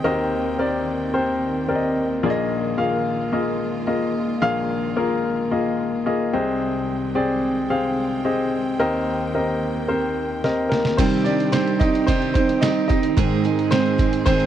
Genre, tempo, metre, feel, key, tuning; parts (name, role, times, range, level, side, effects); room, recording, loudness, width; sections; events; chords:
piano-driven pop; 110 BPM; 4/4; straight; Eb major; A4 = 440 Hz
clear baby grand piano; accompaniment; 0.0-14.5 s; Bb1 to F5; -20 LUFS; left 2 dB
clear studio string section; sustained chords; 0.0-14.5 s; C2 to G5; -30 LUFS; right 6 dB
lo-fi sampler-style drum kit; drums; 10.4-14.5 s; crash cymbal, hi-hat, kick drum, snare drum; -22 LUFS; right 1 dB
picked steel-string acoustic guitar; riff; 11.0-14.5 s; Ab2 to Ab4; -22 LUFS; right 10 dB
little or no reverb; dry, close 1970s-style studio recording; -19 LUFS; side -10 dB against mid
0.0-11.0 A section; 11.0-14.5 B section
drum fill 10.4-11.0; grand piano solo 11.0-14.5
0.0 Eb6; 2.2 Bb7sus4; 6.3 Abmaj7/C; 8.8 Eb6; 11.0 Cm; 13.2 Ab